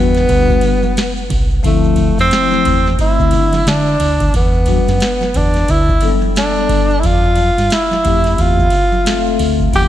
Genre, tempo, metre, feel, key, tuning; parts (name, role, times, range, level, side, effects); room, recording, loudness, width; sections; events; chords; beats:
hip hop, jazz-hop; 89 BPM; 4/4; swing 61% on 16ths; A4 = 440 Hz
breathy tenor saxophone; melody; 0.0-9.9 s; A3 to G4; -16 LUFS; right 1 dB; slapback echo, analog delay
vibraphone with soft mallets; accompaniment; 0.0-9.9 s; F3 to F#5; -19 LUFS; left 10 dB; slapback echo
deep dub fingered electric bass; bass; 0.0-9.9 s; C2 to D3; -17 LUFS; equal
booming analog drum machine; drums; 0.1-9.9 s; hi-hat, kick drum, ride cymbal, snare drum; -16 LUFS; equal
maracas and congas; percussion; 0.2-9.9 s; -29 LUFS; right 6 dB
light reverb; -11 LUFS; side -12 dB against mid
0.0-9.9 A section
0.0 Em9; 1.6 Dm9; 4.3 Em9; 7.0 Fmaj7
0.29 0.97 | 1.64 2.32 2.99 3.66 | 4.34 5.01 5.69 6.36 | 7.04 7.71 8.38 9.06 | 9.73